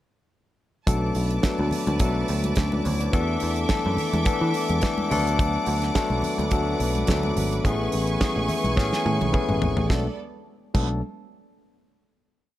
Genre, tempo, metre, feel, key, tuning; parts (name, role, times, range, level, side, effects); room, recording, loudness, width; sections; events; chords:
disco; 106 BPM; 4/4; straight; B dorian; A4 = 437 Hz
barky tine electric piano; accompaniment; 0.9-11.0 s; E3 to E5; -26 LUFS; left 2 dB; overdrive
clear studio string section; sustained chords; 0.9-10.2 s; B3 to D6; -31 LUFS; right 2 dB
picked electric bass; bass; 0.9-11.0 s; G#1 to E3; -26 LUFS; equal
damped 70s drum kit; drums; 0.9-10.9 s; crash cymbal, hi-hat, kick drum, snare drum, toms; -26 LUFS; right 1 dB
congas; percussion; 0.9-11.0 s; -33 LUFS; left 1 dB
light reverb, studio ambience; -21 LUFS; side -14 dB against mid
0.9-9.9 verse; 9.9-12.2 final chord
tine electric piano fill 8.2-9.9; drum fill 8.8-9.9
0.9 Bm7; 3.1 E7sus4; 5.1 D6; 7.6 Amaj9; 9.9 Bm7